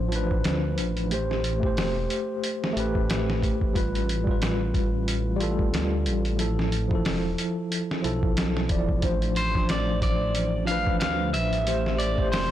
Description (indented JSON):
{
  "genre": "trip hop",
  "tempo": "91 BPM",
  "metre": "4/4",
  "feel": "swing 57% on 16ths",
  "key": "A minor",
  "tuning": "A4 = 440 Hz",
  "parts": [
    { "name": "tine electric piano", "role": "accompaniment", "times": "0.0-12.5 s", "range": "F3 to D5", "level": "-28 LUFS", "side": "left 1 dB", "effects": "fast stereo tremolo, tape echo" },
    { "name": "dark detuned saw bass", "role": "bass", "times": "0.0-12.5 s", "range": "E1 to D2", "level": "-28 LUFS", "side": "equal", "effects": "none" },
    { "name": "boom bap sampler-style drum kit", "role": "drums", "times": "0.1-12.5 s", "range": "hi-hat, kick drum, snare drum", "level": "-28 LUFS", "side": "equal", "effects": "none" },
    { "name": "bowed-like drone", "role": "texture", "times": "10.5-12.5 s", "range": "G3 to G4", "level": "-43 LUFS", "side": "right 1 dB", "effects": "none" },
    { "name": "electric guitar at the edge of break-up", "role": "melody", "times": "9.4-12.5 s", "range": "C5 to F5", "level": "-27 LUFS", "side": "equal", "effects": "vintage 12-bit sampler grit, tape echo" }
  ],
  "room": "light reverb",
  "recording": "blown-out, overdriven recording, overdrive",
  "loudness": "-23 LUFS",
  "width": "side -12 dB against mid",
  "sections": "0.0-12.5 A section",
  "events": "none",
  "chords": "0.0 Dm7/A; 1.1 Am7; 3.8 G7/A; 6.4 Fmaj7; 9.0 Dm7/A; 11.7 Am7"
}